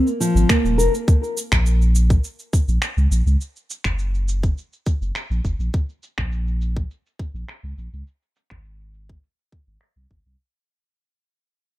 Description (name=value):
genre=organic downtempo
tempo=103 BPM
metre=4/4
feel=straight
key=Bb minor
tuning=A4 = 439 Hz
part: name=nylon-string guitar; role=arpeggios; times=0.0-0.9 s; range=F3 to Bb4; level=-20 LUFS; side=equal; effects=tape echo
part: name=electronic cabasa and finger snaps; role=drums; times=0.1-10.4 s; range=none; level=-26 LUFS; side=right 1 dB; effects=low-pass filter on perc, low-pass filter on snare, low-pass filter on room
part: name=warm sub bass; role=bass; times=0.3-10.4 s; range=Eb1 to Db2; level=-19 LUFS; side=equal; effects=none
part: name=electronic kick drum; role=drums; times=0.5-10.2 s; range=none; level=-19 LUFS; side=equal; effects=none
room=little or no reverb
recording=echo-heavy mix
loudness=-18 LUFS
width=side -16 dB against mid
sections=0.0-1.1 A section; 1.1-10.4 B section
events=fade-out 1.1-10.4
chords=none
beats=0.49 | 1.07 1.66 2.24 2.82 | 3.40 3.99 4.57 5.15 | 5.73 6.32 6.90 7.48 | 8.06 8.65 9.23 9.81